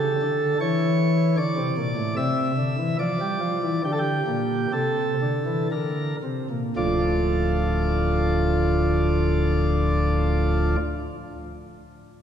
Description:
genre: classical, chorale-style piece for pipe organ.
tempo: 56-78 BPM.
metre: 3/4.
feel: straight.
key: D minor.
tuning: A4 = 440 Hz.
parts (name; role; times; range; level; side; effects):
chamber organ, principal chorus; solo; 0.0-10.8 s; D1 to E5; -21 LUFS; equal; none.
room: wet church reverb, RT60 3.4 s.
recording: minimal, uncompressed stereo recording.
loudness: -21 LUFS.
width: side -8 dB against mid.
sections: 0.0-6.8 A section; 6.8-10.0 B section.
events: slowing down 0.2-6.8.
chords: 0.0 A; 1.4 Dm; 3.8 Bbmaj13; 6.8 Dm.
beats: 0.60 | 1.38 2.17 2.99 | 3.84 4.74 5.71 | 6.77 7.85 8.93.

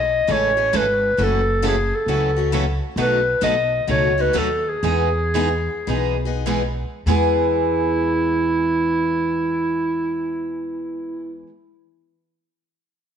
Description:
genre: acoustic string swing (jazz manouche).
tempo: 94-134 BPM.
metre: 4/4.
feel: swing 64% on 8ths.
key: E major.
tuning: A4 = 440 Hz.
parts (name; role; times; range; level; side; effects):
breathy clarinet; melody; 0.0-11.4 s; E4 to D#5; -20 LUFS; equal; none.
upright bass; bass; 0.0-11.4 s; F#1 to E2; -24 LUFS; equal; none.
picked steel-string acoustic guitar; accompaniment; 0.3-11.5 s; B2 to G#4; -26 LUFS; left 10 dB; none.
picked steel-string acoustic guitar; accompaniment; 0.3-11.5 s; B2 to A4; -27 LUFS; right 10 dB; none.
room: moderate echo chamber reverb, RT60 1.4 s, studio ambience.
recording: 1960s-style stereo with parts hard left and right.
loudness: -18 LUFS.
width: side -8 dB against mid.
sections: 0.0-7.1 A section; 7.1-12.2 B section.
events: slowing down 3.0-7.1.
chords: 0.0 Amaj7; 1.2 F#m7; 3.0 B7; 4.8 Emaj7; 7.1 E.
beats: 0.29 0.73 | 1.18 1.63 2.08 2.52 | 2.97 3.42 3.88 4.35 | 4.83 5.34 5.88 6.45 | 7.06 7.70 8.34 8.98 | 9.62 10.26 10.90.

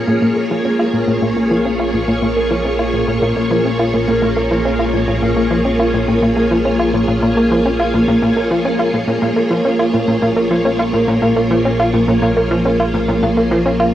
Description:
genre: ambient, sequencer-driven space music.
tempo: 105 BPM.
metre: 4/4.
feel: straight.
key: Bb minor.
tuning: A4 = 437 Hz.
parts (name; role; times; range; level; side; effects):
string machine, full ensemble; sustained chords; 0.0-13.9 s; Bb3 to Db5; -16 LUFS; equal; ensemble chorus, cassette tape, shimmer reverb.
plucky analog bass; riff; 0.0-13.9 s; Bb2 to F4; -17 LUFS; equal; cassette tape, ping-pong delay, shimmer reverb.
analog drone; bass; 1.3-13.9 s; Bb1; -24 LUFS; equal; chorus.
room: wet booth ambience, RT60 0.2 s.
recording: home recording on cassette.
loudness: -13 LUFS.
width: side -12 dB against mid.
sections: 0.0-13.9 A section.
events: filter sweep on analog synth bass 0.0-13.9.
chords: 0.0 Bbm7.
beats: 0.51 1.08 1.65 | 2.22 2.79 3.37 3.94 | 4.51 5.08 5.65 6.22 | 6.79 7.37 7.94 8.51 | 9.08 9.65 10.22 10.79 | 11.37 11.94 12.51 13.08 | 13.65.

